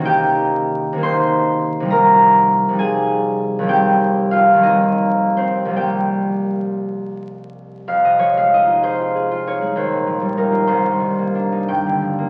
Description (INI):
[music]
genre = classical, solo harp piece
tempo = 50-69 BPM (dotted quarters)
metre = 6/8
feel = rubato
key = F minor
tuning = A4 = 440 Hz
[part]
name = concert harp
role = solo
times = 0.0-12.3 s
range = C2 to C6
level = -17 LUFS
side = equal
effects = none
[sound]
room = wet recital hall reverb, RT60 1.6 s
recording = very old 78 rpm record, vinyl crackle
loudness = -17 LUFS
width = mono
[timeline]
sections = 0.0-7.9 A section; 7.9-12.3 B section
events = none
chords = 0.1 Cm7; 1.9 Fm9/C; 3.7 Eb69; 5.8 C7sus4; 7.9 Fm7; 9.8 Ebadd9; 10.7 Cm9; 11.7 Gm7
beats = | 0.05 1.02 | 1.90 2.79 | 3.69 4.64 | 5.76 6.83 | 7.88 8.84 | 9.76 10.67 | 11.67